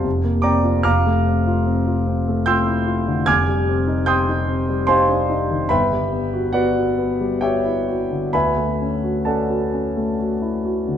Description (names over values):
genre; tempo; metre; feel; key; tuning
classical, impressionist solo piano; 64-76 BPM; 3/4; rubato; unclear; A4 = 440 Hz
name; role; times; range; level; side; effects
warm concert grand piano; solo; 0.0-11.0 s; F1 to Ab6; -17 LUFS; equal; none
room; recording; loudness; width
wet recital hall reverb, RT60 1.7 s; dark, warm production; -17 LUFS; side -9 dB against mid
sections
0.0-11.0 A section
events
none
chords
0.1 Bbadd9/F; 0.9 F6; 3.3 Abmaj7/F; 5.7 Gmaj7; 8.3 Dmaj7